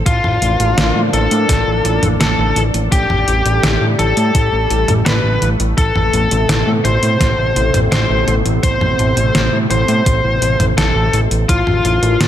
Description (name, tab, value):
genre	synthwave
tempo	84 BPM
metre	4/4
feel	straight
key	A minor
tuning	A4 = 440 Hz
part	lush unison pad	sustained chords	0.0-12.3 s	B2 to D4	-22 LUFS	equal	chorus, phaser, sidechain pumping
part	fat analog bass	bass	0.0-12.3 s	A1 to A2	-16 LUFS	equal	none
part	biting lead guitar	melody	0.1-12.3 s	F4 to C5	-17 LUFS	left 2 dB	overdrive, ping-pong delay
part	detuned 8-bit digital drum machine	drums	0.1-12.3 s	hi-hat, snare drum, toms	-19 LUFS	equal	overdrive, gated reverb
part	electronic kick drum	drums	0.1-11.6 s	none	-16 LUFS	equal	none
room	light reverb, digital ambience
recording	none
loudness	-12 LUFS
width	side -11 dB against mid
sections	0.0-12.3 A section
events	none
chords	0.1 Bb/A; 2.9 Gsus2/A; 5.8 Amadd9; 11.5 Bb/A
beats	| 0.06 0.78 1.49 2.21 | 2.92 3.63 4.35 5.06 | 5.78 6.49 7.21 7.92 | 8.63 9.35 10.06 10.78 | 11.49 12.21